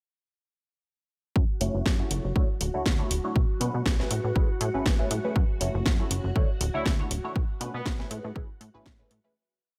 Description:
filtered disco house; 120 BPM; 4/4; swing 54% on 16ths; A major; A4 = 439 Hz
string machine, full ensemble; sustained chords; 1.4-9.4 s; F#4 to F#5; -40 LUFS; equal; ensemble chorus, sidechain pumping, low-pass filter
plucky analog bass; bass; 1.4-9.2 s; D1 to B2; -33 LUFS; equal; sidechain pumping, low-pass filter
electronic kick drum; drums; 1.4-9.0 s; -28 LUFS; equal
funky polysynth comp; accompaniment; 1.6-9.3 s; A3 to C#5; -36 LUFS; equal; chorus, phaser, sidechain pumping, low-pass filter
house drum kit; drums; 1.6-9.2 s; hi-hat, snare drum; -34 LUFS; equal; sidechain pumping on hats
bright horn section; melody; 6.7-7.9 s; B3 to E4; -37 LUFS; equal; sidechain pumping, low-pass filter
light reverb; -27 LUFS; mono
1.4-9.4 groove
filter sweep 1.4-9.4; fade-out 6.7-9.4
1.4 F#m7; 2.4 Dmaj9; 3.4 Bm9; 4.1 Amaj9; 5.4 F#m7; 6.4 Dmaj9; 7.4 Bm9; 8.1 Amaj9

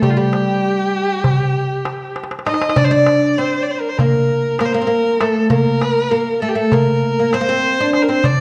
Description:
Turkish makam ensemble; 197 BPM (eighths); 9/8; straight; G makam nihavent; A4 = 441 Hz
warm violin; melody; 0.0-8.4 s; F4 to Eb5; -20 LUFS; equal
oud; second line; 0.0-8.4 s; G3 to Eb4; -21 LUFS; equal; tape echo
darbuka; percussion; 0.0-8.4 s; -21 LUFS; equal
wet recital hall reverb, RT60 1.6 s; dark, warm production; -16 LUFS; mono
0.0-2.8 A section; 2.8-8.4 B section
drum fill 2.2-2.8

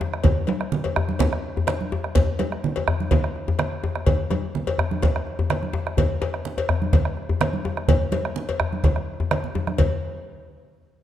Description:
west african traditional, West African drum ensemble; 126 BPM; 4/4; straight
bombo; percussion; 0.0-10.0 s; -24 LUFS; right 2 dB
djembe; percussion; 0.0-10.0 s; -26 LUFS; left 4 dB
congas; percussion; 0.2-10.0 s; -27 LUFS; right 4 dB
cowbell; percussion; 0.2-10.0 s; -29 LUFS; left 4 dB
moderate scoring stage reverb, RT60 1.9 s; dark, warm production; -21 LUFS; side -11 dB against mid
0.0-9.8 A section; 9.8-11.0 B section
drum fill 9.4-9.8

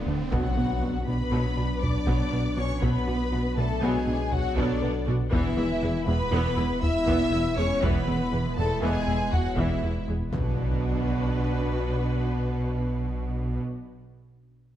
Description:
cinematic, hybrid orchestral and electronic film score; 120 BPM; 5/4; straight; B dorian; A4 = 440 Hz
rich symphonic violin section; melody; 0.0-13.6 s; B4 to E6; -36 LUFS; left 3 dB
rich symphonic violin section; second line; 0.0-13.6 s; B3 to E5; -35 LUFS; left 1 dB
chorused pulse-width pad; sustained chords; 0.0-13.6 s; D3 to D5; -36 LUFS; equal
mellow French horn section; sustained chords; 0.0-13.6 s; D3 to E4; -33 LUFS; left 2 dB
pure sine sub bass; bass; 0.0-13.6 s; D1 to B1; -33 LUFS; equal
riser and impact; sound effects; 0.0-2.8, 10.3-14.2 s; -36 LUFS; equal
warm symphonic viola section; accompaniment; 0.1-13.6 s; E3 to G#4; -34 LUFS; equal
warbly dusty pluck; arpeggios; 0.1-10.2 s; E3 to B4; -36 LUFS; left 2 dB
rubbery square bass; riff; 0.1-10.2 s; E2 to B3; -30 LUFS; right 1 dB
rich symphonic cello section; bass; 0.1-13.6 s; D2 to B2; -34 LUFS; right 2 dB
warm symphonic double bass section; bass; 0.1-13.6 s; E1 to D2; -32 LUFS; right 2 dB
taiko ensemble; drums; 0.3-11.3 s; -31 LUFS; equal
moderate scoring stage reverb, RT60 1.5 s; dark, warm production; -24 LUFS; side -11 dB against mid
0.3-10.3 A section; 10.3-12.8 B section
riser 0.0-0.3; impact 0.3-2.8, 10.3-12.8
0.3 Bm; 5.3 E; 10.3 Bm

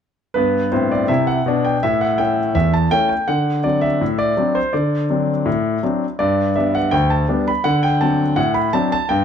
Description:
ragtime piano; 82 BPM; 2/4; straight; G major; A4 = 440 Hz
warm grand piano; solo; 0.3-9.2 s; D2 to B5; -16 LUFS; equal
moderate echo chamber reverb, RT60 1.5 s; -16 LUFS; side -8 dB against mid
0.4-9.2 A section
0.4 G; 1.8 A; 3.3 D7; 6.2 G; 7.7 D7

